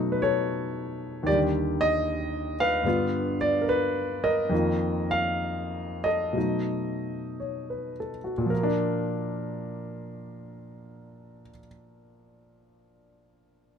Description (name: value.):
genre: solo jazz.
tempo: 52-77 BPM.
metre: 4/4.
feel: swing 66% on 8ths, rubato.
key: Bb major.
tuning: A4 = 440 Hz.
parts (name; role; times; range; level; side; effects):
warm grand piano; solo; 0.0-13.8 s; Eb2 to F5; -25 LUFS; equal; none.
room: light reverb.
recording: close, detailed microphones.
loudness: -25 LUFS.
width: side -7 dB against mid.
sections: 0.0-8.5 A section; 8.5-13.1 B section.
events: slowing down 1.3-8.5.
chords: 0.0 B7; 1.3 Ebmaj7; 2.9 G7; 4.5 F7sus4; 6.4 B7; 8.5 Bb.